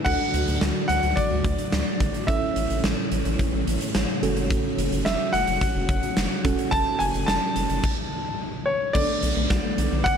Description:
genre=synth-pop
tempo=108 BPM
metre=4/4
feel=straight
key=unclear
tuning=A4 = 440 Hz
part: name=clear grand piano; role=melody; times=0.0-10.2 s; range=C#5 to A5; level=-26 LUFS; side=left 1 dB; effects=slapback echo
part: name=ensemble organ-string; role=sustained chords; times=0.0-10.2 s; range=A2 to F#4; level=-30 LUFS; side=left 1 dB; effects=ensemble chorus
part: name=soft round pluck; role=arpeggios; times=0.0, 8.9-10.2 s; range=D3 to F#4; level=-33 LUFS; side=left 7 dB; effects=chorus, slapback echo
part: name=muted felt-like synth keys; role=accompaniment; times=0.1-10.2 s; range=B3 to A4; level=-31 LUFS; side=right 9 dB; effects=chorus
part: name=rubbery square bass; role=bass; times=0.1-10.0 s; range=E1 to D2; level=-28 LUFS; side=equal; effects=none
part: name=huge arena drum kit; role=drums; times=0.1-10.2 s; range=crash cymbal, hi-hat, kick drum, snare drum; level=-26 LUFS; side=equal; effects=gated reverb
room=moderate recital hall reverb, RT60 1.7 s, small room ambience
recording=none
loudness=-21 LUFS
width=side -7 dB against mid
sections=0.1-8.9 A section; 8.9-10.2 B section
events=stop 7.8-8.9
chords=0.1 D; 2.3 A; 4.2 F#m; 8.9 Bm7

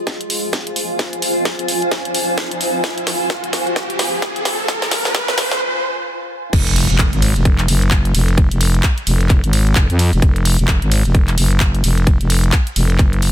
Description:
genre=bass house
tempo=130 BPM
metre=4/4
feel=swing 60% on 16ths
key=F phrygian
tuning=A4 = 440 Hz
part: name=riser and impact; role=sound effects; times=0.3-8.4 s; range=none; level=-24 LUFS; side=right 1 dB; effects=none
part: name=granular cloud pad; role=texture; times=0.0-5.6 s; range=F4 to C6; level=-22 LUFS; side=equal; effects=built-in reverb, sidechain pumping
part: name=electronic kick drum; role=drums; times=0.1-13.1 s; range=none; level=-15 LUFS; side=equal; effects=high-pass filter on kick
part: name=garage drum kit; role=drums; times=0.1-13.3 s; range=crash cymbal, handclaps, hi-hat, ride cymbal, snare drum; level=-20 LUFS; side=equal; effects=high-pass filter on hats, high-pass filter on snare, high-pass filter on cymbals
part: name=growling FM bass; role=bass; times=6.5-13.3 s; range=F1 to F2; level=-14 LUFS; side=equal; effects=tube saturation, sidechain pumping
room=little or no reverb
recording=dense, heavily limited modern master, high-pass filter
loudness=-14 LUFS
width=side -11 dB against mid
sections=0.0-6.5 A section; 6.5-13.3 B section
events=build-up 0.0-6.5; drum fill 0.0-5.6; riser 0.3-5.6; stop 5.6-6.5; drop 6.5-13.3; impact 6.5-8.4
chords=0.0 Fm; 6.5 N.C.

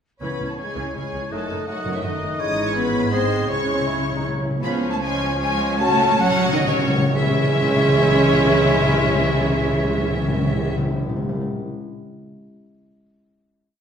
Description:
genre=classical, dramatic, fast romantic movement for symphony orchestra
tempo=118-167 BPM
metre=3/4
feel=rubato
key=C# minor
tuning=A4 = 438 Hz
part: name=clear symphonic violin section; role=melody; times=0.2-10.7 s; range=C#5 to D#6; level=-28 LUFS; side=left 1 dB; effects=none
part: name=bright oboe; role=second line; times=0.2-10.7 s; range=C#5 to D#5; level=-31 LUFS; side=equal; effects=none
part: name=concert flute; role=second line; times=0.2-10.7 s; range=C#5 to G#6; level=-27 LUFS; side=left 2 dB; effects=none
part: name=rich studio violin section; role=second line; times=0.2-10.7 s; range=D#4 to D#5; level=-30 LUFS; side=left 2 dB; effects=none
part: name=warm clarinet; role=second line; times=0.2-10.7 s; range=C#4 to E4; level=-30 LUFS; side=equal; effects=none
part: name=clear symphonic viola section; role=accompaniment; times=0.2-10.7 s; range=C#3 to E4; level=-28 LUFS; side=equal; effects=none
part: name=mellow bassoon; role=accompaniment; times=0.2-10.7 s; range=E#3 to E4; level=-27 LUFS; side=right 3 dB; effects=none
part: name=dark French horn section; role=sustained chords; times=0.2-10.7 s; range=D#3 to G#4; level=-27 LUFS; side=left 1 dB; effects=none
part: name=dark symphonic double bass section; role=bass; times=0.2-10.7 s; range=F#1 to C#2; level=-28 LUFS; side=right 1 dB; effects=none
part: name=warm symphonic cello section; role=bass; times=0.2-10.7 s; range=C#2 to B3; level=-27 LUFS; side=right 2 dB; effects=none
part: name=timpani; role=percussion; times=0.2-0.7, 3.5-11.5 s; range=C#3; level=-24 LUFS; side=left 1 dB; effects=none
room=wet recital hall reverb, RT60 1.4 s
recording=none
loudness=-18 LUFS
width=side -8 dB against mid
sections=0.2-4.6 A section; 4.6-7.1 coda; 7.1-10.0 final chord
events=timpani fill 3.5-4.6, 5.8-7.1; slowing down 4.1-7.1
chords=0.2 C#m; 1.3 D#dim/F#; 2.4 C#m/G#; 3.1 G#; 3.5 C#m; 4.6 C#7; 5.8 F#m/C#; 7.1 C#m

